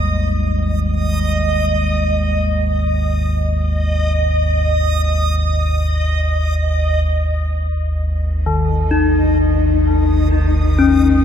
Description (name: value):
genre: dark ambient drone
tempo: free time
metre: none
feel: none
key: unclear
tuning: A4 = 435 Hz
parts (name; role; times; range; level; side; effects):
- gamelan-type bronze metallophone; arpeggios; 0.0-2.5, 8.5-11.2 s; Eb3 to Eb4; -17 LUFS; left 4 dB; diffuse ambient delay
- deep rumbling drone; drone; 0.0-11.2 s; Ab1 to Eb2; -16 LUFS; equal; built-in reverb, wide subtle chorus
- backwards swelling texture; texture; 0.0-11.2 s; Eb5; -22 LUFS; right 2 dB; built-in reverb
- rich studio cello section; sustained chords; 7.1-11.2 s; Ab2 to Eb4; -30 LUFS; equal; none
room: wet cathedral reverb, RT60 5.1 s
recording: none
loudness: -14 LUFS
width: side -8 dB against mid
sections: 0.0-7.1 A section; 7.1-11.2 B section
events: fade-in on cello section 7.1-11.2; fade-in on synth texture 7.1-11.2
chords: 0.0 Ab5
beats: free time